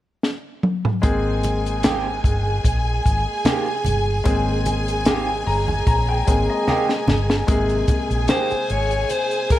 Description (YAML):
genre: lush 1970s-style soul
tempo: 74 BPM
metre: 4/4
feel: swing 54% on 16ths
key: Ab major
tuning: A4 = 441 Hz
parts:
  - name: compact cocktail drum kit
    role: drums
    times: 0.2-9.6 s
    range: hi-hat, kick drum, snare drum, toms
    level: -21 LUFS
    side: equal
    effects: none
  - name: warm symphonic string section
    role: second line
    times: 1.0-9.6 s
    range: Ab4 to Ab5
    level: -25 LUFS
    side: right 1 dB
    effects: none
  - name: bright baby grand piano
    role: accompaniment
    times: 1.0-9.6 s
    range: C3 to Bb5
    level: -25 LUFS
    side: left 2 dB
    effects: none
  - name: vintage muted fingered electric bass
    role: bass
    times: 1.0-9.5 s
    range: G1 to Bb1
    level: -23 LUFS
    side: equal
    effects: none
  - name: congas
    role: percussion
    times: 1.0-9.3 s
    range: none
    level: -28 LUFS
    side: right 2 dB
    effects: none
  - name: electric guitar through a small old amp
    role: riff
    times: 1.8-8.5 s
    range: Eb3 to G4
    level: -26 LUFS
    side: right 5 dB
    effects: wide subtle chorus
  - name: growling alto saxophone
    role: melody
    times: 8.3-9.6 s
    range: Bb4 to Db5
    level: -22 LUFS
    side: left 3 dB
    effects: none
room: light reverb, small room ambience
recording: none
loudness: -18 LUFS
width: side -14 dB against mid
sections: 0.0-1.0 A section; 1.0-7.5 B section; 7.5-9.6 C section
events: drum fill 0.2-1.0, 6.7-7.5; grand piano fill 5.1-7.5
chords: 0.0 N.C.; 1.0 Abmaj9; 7.5 Abadd9